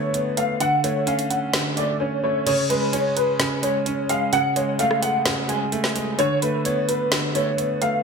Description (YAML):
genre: hip hop, trap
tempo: 129 BPM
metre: 4/4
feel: half-time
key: unclear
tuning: A4 = 440 Hz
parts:
  - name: dark baby grand piano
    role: melody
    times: 0.0-8.0 s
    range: B4 to G#5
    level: -22 LUFS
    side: equal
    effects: ensemble chorus, ping-pong delay
  - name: warm concert grand piano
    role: accompaniment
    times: 0.0-8.0 s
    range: C#3 to C#4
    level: -24 LUFS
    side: right 1 dB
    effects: none
  - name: trap drum kit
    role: drums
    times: 0.1-7.9 s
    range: crash cymbal, hi-hat, rim click, snare drum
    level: -25 LUFS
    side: equal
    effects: gated reverb
room: moderate plate reverb, RT60 1.4 s, small room reverb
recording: bright 1980s-style digital production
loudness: -19 LUFS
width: side -5 dB against mid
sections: 0.0-2.5 A section; 2.5-8.0 B section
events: kick muted 2.5-8.0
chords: 0.0 Bm7; 0.6 Dmaj7; 2.5 C#5; 4.3 F#madd9; 6.2 Bm7